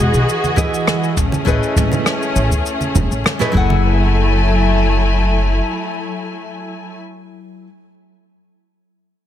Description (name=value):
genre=sunset chillout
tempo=101 BPM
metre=4/4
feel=straight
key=F# dorian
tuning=A4 = 440 Hz
part: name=nylon-string guitar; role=accompaniment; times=0.0-7.7 s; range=E3 to F#5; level=-22 LUFS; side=moving between left 5 dB and right 5 dB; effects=auto-pan, tape echo
part: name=rich studio string section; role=sustained chords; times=0.0-7.0 s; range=E3 to G#5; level=-20 LUFS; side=left 2 dB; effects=none
part: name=upright bass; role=bass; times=0.0-5.6 s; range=E1 to E2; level=-16 LUFS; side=equal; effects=none
part: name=jazz brush drum kit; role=drums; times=0.1-3.5 s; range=cabasa, rim click, toms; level=-22 LUFS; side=equal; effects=none
part: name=congas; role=percussion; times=0.4-3.8 s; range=none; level=-23 LUFS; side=right 3 dB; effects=none
part: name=electronic kick drum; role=drums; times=0.6-3.7 s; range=none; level=-19 LUFS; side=equal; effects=none
room=light reverb, studio ambience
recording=none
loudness=-14 LUFS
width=side -11 dB against mid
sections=0.0-3.8 A section; 3.8-6.2 B section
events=none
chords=0.0 Emaj9; 1.2 Amaj9#11; 3.5 F#m9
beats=0.28 0.87 | 1.47 2.06 2.65 3.25 | 3.84 4.44 5.03 5.63